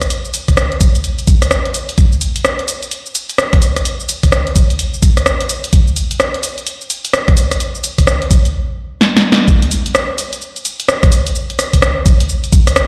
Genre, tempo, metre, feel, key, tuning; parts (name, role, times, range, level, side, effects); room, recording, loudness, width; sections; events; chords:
UK garage; 128 BPM; 4/4; swing 62% on 16ths
punchy analog drum machine; drums; 0.0-12.9 s; cabasa, hi-hat, rim click, snare drum; -18 LUFS; equal
electronic kick drum; drums; 0.5-12.6 s; -12 LUFS; equal
moderate plate reverb, RT60 1.4 s; played on a big sound system in a bare room, large studio reverb; -14 LUFS; mono
0.0-9.5 A section; 9.5-12.9 B section
drum fill 9.0-9.5; band accent 9.3; drop 9.5-12.9